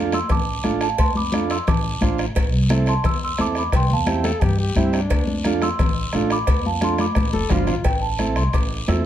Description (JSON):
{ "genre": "latin, cumbia", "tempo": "175 BPM", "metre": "4/4", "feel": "straight", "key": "unclear", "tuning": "A4 = 439 Hz", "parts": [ { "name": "clear trombone", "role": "second line", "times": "0.0, 4.2-7.9 s", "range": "D4 to A4", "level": "-28 LUFS", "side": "left 4 dB", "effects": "none" }, { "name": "overdriven combo organ", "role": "accompaniment", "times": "0.0-9.1 s", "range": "C4 to C5", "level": "-24 LUFS", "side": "right 5 dB", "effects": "none" }, { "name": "upright bass", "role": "bass", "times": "0.0-9.1 s", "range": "F1 to G2", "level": "-24 LUFS", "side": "equal", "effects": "none" }, { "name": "celesta", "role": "melody", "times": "0.1-9.0 s", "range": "F5 to E6", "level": "-25 LUFS", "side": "right 1 dB", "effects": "none" }, { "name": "bombo", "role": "percussion", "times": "0.1-9.1 s", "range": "none", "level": "-23 LUFS", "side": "left 1 dB", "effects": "none" }, { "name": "congas", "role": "percussion", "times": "0.1-9.1 s", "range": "none", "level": "-26 LUFS", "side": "left 3 dB", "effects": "none" }, { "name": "guiro", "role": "percussion", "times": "0.1-9.1 s", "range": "none", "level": "-35 LUFS", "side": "left 4 dB", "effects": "none" }, { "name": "cowbell and timbales", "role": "percussion", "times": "0.3-9.1 s", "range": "none", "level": "-31 LUFS", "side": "right 3 dB", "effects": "none" } ], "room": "little or no reverb", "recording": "close, detailed microphones", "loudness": "-18 LUFS", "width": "side -11 dB against mid", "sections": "0.0-7.8 A section; 7.8-9.1 B section", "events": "drum fill 7.2-7.8; celesta solo 7.8-9.1", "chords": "0.0 Dm; 2.4 Am; 3.7 C; 5.1 Dm; 7.8 Am", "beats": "0.30 0.64 | 0.99 1.33 1.67 2.02 | 2.36 2.70 3.05 3.39 | 3.73 4.08 4.42 4.76 | 5.11 5.45 5.79 6.13 | 6.48 6.82 7.16 7.51 | 7.85 8.19 8.54 8.88" }